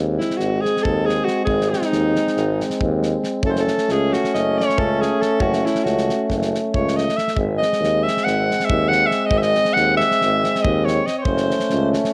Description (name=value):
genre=balkan folk, Balkan brass band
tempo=275 BPM (eighths)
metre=9/8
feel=straight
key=G# phrygian dominant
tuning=A4 = 440 Hz
part: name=warm euphonium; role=accompaniment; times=0.0-12.1 s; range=G#3 to A3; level=-28 LUFS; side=equal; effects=none
part: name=warm trombone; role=accompaniment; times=0.0-12.1 s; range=B#3 to C#4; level=-28 LUFS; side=equal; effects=none
part: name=clear tuba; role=bass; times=0.0-12.0 s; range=F#1 to D#2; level=-25 LUFS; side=equal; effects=none
part: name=bright alto saxophone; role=second line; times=0.2-11.9 s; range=D#4 to F#5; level=-22 LUFS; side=equal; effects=none
part: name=damped 70s drum kit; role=percussion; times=0.2-12.1 s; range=kick drum, snare drum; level=-30 LUFS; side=equal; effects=none
room=light reverb, studio reverb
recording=none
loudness=-19 LUFS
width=mono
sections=0.0-12.1 A section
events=alto saxophone solo 0.0-12.1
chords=0.0 G#; 3.4 F#m; 7.4 G#; 11.3 F#m